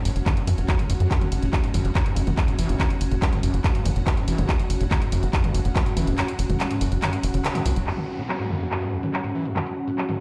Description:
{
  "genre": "driving peak-time techno",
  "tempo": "142 BPM",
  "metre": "4/4",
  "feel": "straight",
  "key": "unclear",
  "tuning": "A4 = 440 Hz",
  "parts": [
    { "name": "screaming distorted acid line", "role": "riff", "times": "0.0-10.2 s", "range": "F#1 to F#3", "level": "-31 LUFS", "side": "equal", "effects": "distortion, chorus, sidechain pumping" },
    { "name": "granular cloud pad", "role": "texture", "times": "0.0-10.2 s", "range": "C#4 to F#5", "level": "-33 LUFS", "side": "equal", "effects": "built-in reverb, sidechain pumping" },
    { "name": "tight sequencer bass", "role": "bass", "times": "0.1-7.8 s", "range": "F#1 to F#2", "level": "-26 LUFS", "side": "equal", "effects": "tube saturation, sidechain pumping" },
    { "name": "techno drum kit", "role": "drums", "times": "0.1-10.2 s", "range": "handclaps, hi-hat, toms", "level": "-31 LUFS", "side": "equal", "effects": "sidechain pumping on hats, low-pass filter on hats, low-pass filter on snare, sidechain pumping on toms, low-pass filter on toms, low-pass filter on room" },
    { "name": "electronic kick drum", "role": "drums", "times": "0.3-5.8 s", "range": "none", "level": "-26 LUFS", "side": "equal", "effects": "none" },
    { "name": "analog drone", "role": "drone", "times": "8.1-10.2 s", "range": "F#3 to F#4", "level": "-38 LUFS", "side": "equal", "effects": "none" },
    { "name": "downlifter", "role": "sound effects", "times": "7.9-10.2 s", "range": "none", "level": "-39 LUFS", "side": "equal", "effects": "none" }
  ],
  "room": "moderate digital room reverb, RT60 1.3 s",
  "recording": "played on a big sound system in a bare room, stone room reverb",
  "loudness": "-23 LUFS",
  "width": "mono",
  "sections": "0.0-7.9 A section; 7.9-10.2 B section",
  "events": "kick drops out 6.2-7.9; band accent 7.4",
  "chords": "0.0 F#5"
}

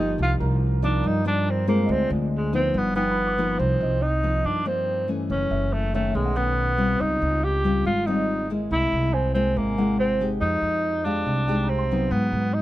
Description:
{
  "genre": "bossa nova",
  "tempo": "141 BPM",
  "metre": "4/4",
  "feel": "straight",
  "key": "C minor",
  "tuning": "A4 = 440 Hz",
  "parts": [
    { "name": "breathy tenor saxophone", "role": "melody", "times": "0.0-12.6 s", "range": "F3 to G4", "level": "-25 LUFS", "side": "equal", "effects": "none" },
    { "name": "nylon-string guitar", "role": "accompaniment", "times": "0.0-12.6 s", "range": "F#2 to G4", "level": "-26 LUFS", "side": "left 2 dB", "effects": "none" },
    { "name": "warm grand piano", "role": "accompaniment", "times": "0.0-12.4 s", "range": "G4 to D6", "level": "-36 LUFS", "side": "right 6 dB", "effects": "none" },
    { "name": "upright bass", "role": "bass", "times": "0.0-12.6 s", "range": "F#1 to Ab2", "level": "-26 LUFS", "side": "equal", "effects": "none" }
  ],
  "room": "little or no reverb",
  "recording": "close, detailed microphones",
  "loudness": "-21 LUFS",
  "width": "side -15 dB against mid",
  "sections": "0.0-3.6 A section; 3.6-12.6 B section",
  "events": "tenor saxophone solo 0.0-3.6",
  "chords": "0.2 Cm11; 1.9 Dm7b5; 2.7 G7b13; 3.6 Cm11; 5.3 F#m7; 6.1 B9; 7.0 Dbmaj9#11; 8.7 C7alt; 10.4 Fm9"
}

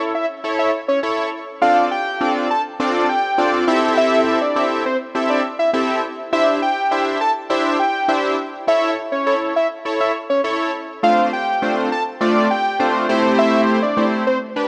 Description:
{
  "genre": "pop",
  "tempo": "102 BPM",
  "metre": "4/4",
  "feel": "straight",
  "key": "unclear",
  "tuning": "A4 = 440 Hz",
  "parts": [
    { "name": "big bright polysynth", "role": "accompaniment", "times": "0.0-14.7 s", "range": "A3 to E5", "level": "-21 LUFS", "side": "equal", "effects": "chorus" },
    { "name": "fat analog lead", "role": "melody", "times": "0.1-14.4 s", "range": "C5 to A5", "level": "-22 LUFS", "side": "equal", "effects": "chorus, dub echo" }
  ],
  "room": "moderate lush hall reverb, RT60 2.7 s",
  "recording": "worn, warbling old tape, cassette tape, warbly pitch drift",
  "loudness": "-18 LUFS",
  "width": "mono",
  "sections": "0.0-14.7 A section",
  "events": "none",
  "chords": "0.0 A; 1.6 Dm7; 3.7 Am7; 6.3 Cadd9; 8.7 A; 11.0 Dm7; 13.1 Am7"
}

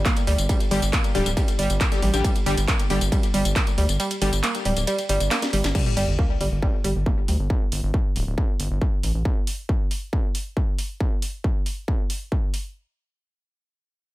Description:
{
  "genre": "driving peak-time techno",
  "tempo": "137 BPM",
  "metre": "4/4",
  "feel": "straight",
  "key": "G minor",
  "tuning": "A4 = 440 Hz",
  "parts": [
    { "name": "gritty driven synth bass", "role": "bass", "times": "0.0-9.2 s", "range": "D1 to D2", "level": "-23 LUFS", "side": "equal", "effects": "sidechain pumping" },
    { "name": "analog pluck", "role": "riff", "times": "0.1-7.3 s", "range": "G3 to Bb3", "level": "-26 LUFS", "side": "right 2 dB", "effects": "chorus, tube saturation, sidechain pumping, ping-pong delay" },
    { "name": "electronic kick drum", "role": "drums", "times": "0.1-12.4 s", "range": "none", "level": "-23 LUFS", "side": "equal", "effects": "distortion, overdrive" },
    { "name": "techno drum kit", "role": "drums", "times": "0.1-12.6 s", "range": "crash cymbal, handclaps, hi-hat, ride cymbal, snare drum, tambourine", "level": "-28 LUFS", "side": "equal", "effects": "overdrive, sidechain pumping on hats, sidechain pumping on perc, sidechain pumping on cymbals" },
    { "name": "supersaw stab", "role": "stabs", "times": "0.7-4.3 s", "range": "D3 to G4", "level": "-29 LUFS", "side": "left 4 dB", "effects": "sidechain pumping, ping-pong delay" },
    { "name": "sub drop", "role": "sound effects", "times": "5.8-7.5 s", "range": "none", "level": "-31 LUFS", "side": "equal", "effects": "none" }
  ],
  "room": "digital ambience",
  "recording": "none",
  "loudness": "-20 LUFS",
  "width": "side -17 dB against mid",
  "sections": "0.0-5.7 A section; 5.7-12.8 B section",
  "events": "drop 0.0-5.7; kick drops out 4.0-5.7; drum fill 5.3-5.7; impact 5.7-7.5; filter sweep on synth arpeggio sound 5.7-7.5",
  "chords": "0.0 G5"
}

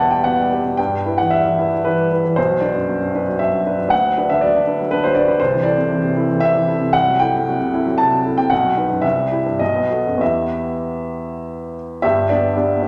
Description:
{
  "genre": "classical, romantic character piece for solo piano",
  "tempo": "95-126 BPM",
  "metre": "3/4",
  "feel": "rubato",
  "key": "E minor",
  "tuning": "A4 = 441 Hz",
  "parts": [
    { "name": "clear upright piano", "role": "solo", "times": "0.0-12.9 s", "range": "G1 to A5", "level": "-18 LUFS", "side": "equal", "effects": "none" }
  ],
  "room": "wet recital hall reverb, RT60 1.3 s",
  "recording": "none",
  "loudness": "-18 LUFS",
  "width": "mono",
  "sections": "0.0-12.0 A section",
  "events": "none",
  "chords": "0.0 Em; 0.8 Em/G; 2.4 Bm; 3.9 Bm/D; 5.4 Am/C; 6.9 F#m7b5/C; 8.5 B; 9.0 C; 9.6 B7; 10.2 Em; 12.0 G"
}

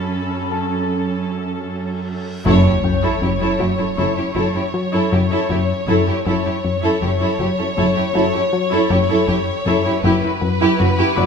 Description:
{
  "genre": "cinematic",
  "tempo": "79 BPM",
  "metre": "5/4",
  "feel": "straight",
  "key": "F# phrygian",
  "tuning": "A4 = 439 Hz",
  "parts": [
    { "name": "rich symphonic viola section", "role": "accompaniment", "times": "0.0-11.3 s", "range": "C#4 to A4", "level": "-22 LUFS", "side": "right 2 dB", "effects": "none" },
    { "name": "rich symphonic cello section", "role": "bass", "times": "0.0-11.2 s", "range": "F#2", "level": "-24 LUFS", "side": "right 4 dB", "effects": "none" },
    { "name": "reverse cymbal and sub drop", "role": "sound effects", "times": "2.3-6.3 s", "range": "none", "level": "-27 LUFS", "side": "equal", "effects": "none" },
    { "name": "clear symphonic violin section", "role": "texture", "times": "0.0-2.0, 10.0-11.3 s", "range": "A5 to C#6", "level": "-32 LUFS", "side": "left 5 dB", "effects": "none" },
    { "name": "concert harp", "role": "texture", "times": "0.5-11.3 s", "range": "A4 to D6", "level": "-28 LUFS", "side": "left 5 dB", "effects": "none" },
    { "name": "clear chamber violin section", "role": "melody", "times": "2.5-11.3 s", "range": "B4 to C#5", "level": "-22 LUFS", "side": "left 3 dB", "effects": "none" },
    { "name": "clear symphonic violin section", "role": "second line", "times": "2.5-11.2 s", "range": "F#4 to A4", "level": "-24 LUFS", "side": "equal", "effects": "none" },
    { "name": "plucky analog bass", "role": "riff", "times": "2.5-11.3 s", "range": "F#2 to F#3", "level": "-20 LUFS", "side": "left 3 dB", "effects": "none" },
    { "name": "rich symphonic double bass section", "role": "bass", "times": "2.5-11.3 s", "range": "F#1", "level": "-25 LUFS", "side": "right 4 dB", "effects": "none" }
  ],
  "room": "moderate scoring stage reverb, RT60 1.5 s",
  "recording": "none",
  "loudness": "-16 LUFS",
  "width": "side -6 dB against mid",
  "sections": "0.0-2.5 A section; 2.5-11.3 B section",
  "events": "reverse cymbal 2.3; band accent 2.5-3.2; impact 2.5-6.3",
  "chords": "0.0 Aadd9/F#; 2.5 F#m7"
}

